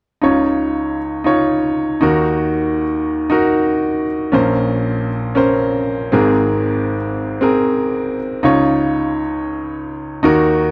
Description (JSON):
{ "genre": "pop", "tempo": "117 BPM", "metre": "4/4", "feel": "straight", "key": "unclear", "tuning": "A4 = 440 Hz", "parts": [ { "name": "bright upright piano", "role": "solo", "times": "0.2-10.7 s", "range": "Ab1 to Db5", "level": "-17 LUFS", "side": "equal", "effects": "none" } ], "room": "light reverb, studio ambience", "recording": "dry, close 1970s-style studio recording", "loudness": "-17 LUFS", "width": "mono", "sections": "0.2-8.4 A section; 8.4-10.7 B section", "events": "none", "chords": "0.2 Dbadd9; 2.0 Ebm; 4.3 Bbmadd9; 6.1 Abadd9; 8.4 Dbadd9" }